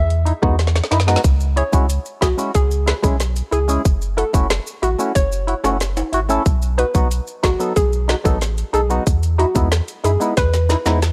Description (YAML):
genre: dancehall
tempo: 92 BPM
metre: 4/4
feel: straight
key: unclear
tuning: A4 = 439 Hz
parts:
  - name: hollow square pluck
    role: melody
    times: 0.0-10.8 s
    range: F#4 to E5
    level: -25 LUFS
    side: equal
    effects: chorus
  - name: warm sub bass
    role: bass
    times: 0.0-11.1 s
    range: F#1 to F#2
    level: -21 LUFS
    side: equal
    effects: none
  - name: island pop drum kit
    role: drums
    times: 0.1-11.1 s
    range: hi-hat, kick drum, rim click, snare drum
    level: -21 LUFS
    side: equal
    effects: none
  - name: percussive organ stab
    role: accompaniment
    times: 0.3-11.0 s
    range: F#3 to B4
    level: -24 LUFS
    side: equal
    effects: chorus
  - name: maracas and timbales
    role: percussion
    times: 1.2-11.1 s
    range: none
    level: -32 LUFS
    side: equal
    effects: none
room: little or no reverb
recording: dry, gritty hardware recording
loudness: -18 LUFS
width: mono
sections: 0.0-11.1 A section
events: drum fill 0.6-1.2, 10.4-11.1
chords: 0.0 Emaj7; 1.2 C#m; 3.9 F#m7; 6.5 B; 9.1 Emaj7